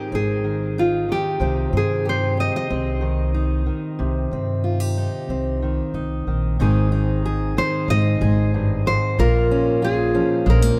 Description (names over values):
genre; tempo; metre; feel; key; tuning
acoustic folk-pop ballad; 93 BPM; 4/4; straight; Ab major; A4 = 441 Hz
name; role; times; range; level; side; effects
nylon-string guitar; melody; 0.0-10.8 s; F4 to Eb5; -26 LUFS; equal; none
fingerpicked steel-string acoustic guitar; accompaniment; 0.0-10.8 s; G2 to Ab4; -26 LUFS; equal; none
upright bass; bass; 0.1-10.7 s; Ab1 to G2; -24 LUFS; equal; none
room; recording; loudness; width
moderate cathedral reverb, RT60 6.0 s; in a vast, echoing space; -21 LUFS; mono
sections
0.0-6.6 A section; 6.6-10.8 B section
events
none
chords
0.0 Abmaj7; 1.4 Cm; 6.6 Ab; 9.2 Bbm